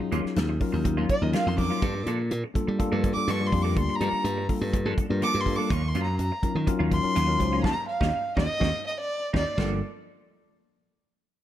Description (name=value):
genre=electric jazz fusion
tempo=124 BPM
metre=4/4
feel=straight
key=unclear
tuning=A4 = 440 Hz
part: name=dark violin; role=melody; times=0.0-9.6 s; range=D5 to D6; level=-29 LUFS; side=equal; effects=none
part: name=bright tine electric piano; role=accompaniment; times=0.0-9.8 s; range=Gb3 to C5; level=-30 LUFS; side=left 4 dB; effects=none
part: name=clean electric guitar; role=stabs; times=0.0-9.8 s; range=F3 to A4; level=-34 LUFS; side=right 3 dB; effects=analog chorus, slapback echo
part: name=slap bass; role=bass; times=0.1-9.8 s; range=G1 to G3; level=-27 LUFS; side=equal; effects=none
part: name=modern studio drum kit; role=drums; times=0.1-9.7 s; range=china cymbal, hi-hat, kick drum, snare drum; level=-30 LUFS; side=equal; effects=none
room=light reverb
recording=none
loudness=-23 LUFS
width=side -12 dB against mid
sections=0.0-9.6 A section; 9.6-11.4 B section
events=violin solo 0.0-9.6; band accent 7.6-9.6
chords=0.0 Ebm9; 1.8 Gm9; 5.7 Ebm9; 9.6 Gm9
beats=0.37 0.85 1.34 | 1.82 2.31 2.79 3.28 | 3.76 4.25 4.74 5.22 | 5.71 6.19 6.67 7.16 | 7.64 8.13 8.61 9.10 | 9.58